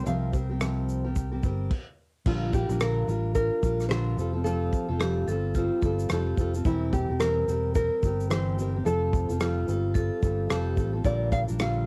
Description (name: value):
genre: acoustic pop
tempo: 109 BPM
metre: 4/4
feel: swing 60% on 16ths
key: F major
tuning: A4 = 435 Hz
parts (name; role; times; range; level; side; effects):
- nylon-string guitar; melody; 0.0-11.9 s; E4 to F5; -32 LUFS; equal; none
- fingerpicked steel-string acoustic guitar; accompaniment; 0.0-11.9 s; Bb2 to Bb4; -34 LUFS; equal; cassette tape
- fingered electric bass; bass; 0.0-11.8 s; E1 to C2; -31 LUFS; equal; none
- loose indie drum kit; drums; 0.1-11.8 s; crash cymbal, kick drum, rim click, shaker; -31 LUFS; equal; cassette tape
- vibraphone with medium hard mallets; second line; 5.0-10.9 s; F4 to A4; -34 LUFS; equal; cassette tape, tape echo
room: little or no reverb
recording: home recording on cassette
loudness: -27 LUFS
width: mono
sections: 0.0-2.3 A section; 2.3-11.9 B section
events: stop 1.7-2.3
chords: 0.0 C7sus4; 2.3 Bb6; 4.2 Fadd9; 6.7 C7/E; 8.8 Fadd9; 11.0 Bb6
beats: | 0.06 0.61 1.16 1.71 | 2.26 2.81 3.36 3.91 | 4.46 5.00 5.55 6.10 | 6.65 7.20 7.75 8.30 | 8.85 9.40 9.95 10.50 | 11.04 11.59